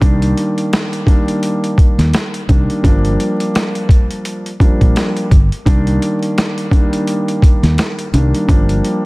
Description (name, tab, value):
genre	hip hop, boom-bap hip-hop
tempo	85 BPM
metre	4/4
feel	swing 58% on 16ths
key	C minor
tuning	A4 = 440 Hz
part	dark grand piano	accompaniment	0.0-9.1 s	Eb3 to D4	-17 LUFS	equal	cassette tape, high-pass filter, low-pass filter
part	fingered electric bass	bass	0.0-8.8 s	G1 to Eb2	-14 LUFS	equal	none
part	boom bap sampler-style drum kit	drums	0.0-9.0 s	hi-hat, kick drum, snare drum	-13 LUFS	equal	none
room	little or no reverb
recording	dense, heavily limited modern master, vinyl crackle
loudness	-11 LUFS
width	side -23 dB against mid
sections	0.0-9.1 A section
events	none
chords	0.0 Cm9; 2.8 Gm7; 5.7 Cm9; 8.5 Gm7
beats	| 0.01 0.72 1.43 2.13 | 2.84 3.54 4.25 4.96 | 5.66 6.37 7.07 7.78 | 8.48